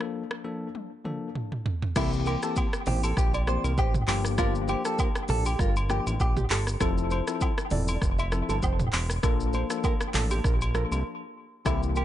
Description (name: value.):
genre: afrobeats.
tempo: 99 BPM.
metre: 4/4.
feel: swing 55% on 16ths.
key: unclear.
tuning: A4 = 440 Hz.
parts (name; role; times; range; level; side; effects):
bell-like tine electric piano; accompaniment; 0.0-12.0 s; E3 to A4; -33 LUFS; moving between left 12 dB and left 2 dB; auto-pan, analog delay.
deep house drum kit; drums; 0.0-12.0 s; crash cymbal, handclaps, hi-hat, kick drum, rim click, shaker, toms; -28 LUFS; equal; none.
direct-recorded clean electric guitar; melody; 2.0-6.7, 11.7-12.0 s; E4 to C5; -32 LUFS; right 1 dB; wide subtle chorus, analog delay.
nylon-string guitar; riff; 2.0-12.0 s; G4 to E5; -36 LUFS; right 6 dB; analog delay.
fat analog bass; bass; 2.0-12.0 s; E1 to C2; -28 LUFS; equal; none.
agogo bells and woodblock; percussion; 2.0-12.0 s; none; -36 LUFS; left 2 dB; analog delay.
room: light reverb.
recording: echo-heavy mix, nothing above 10.8 kHz.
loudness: -24 LUFS.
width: side -12 dB against mid.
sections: 0.0-2.0 A section; 2.0-12.0 B section.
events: drum fill 0.7-2.0; break 11.1-11.7.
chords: 0.0 Bbmaj7; 2.0 C7; 4.1 Gm7; 6.8 Fmaj7; 9.2 Bbmaj7.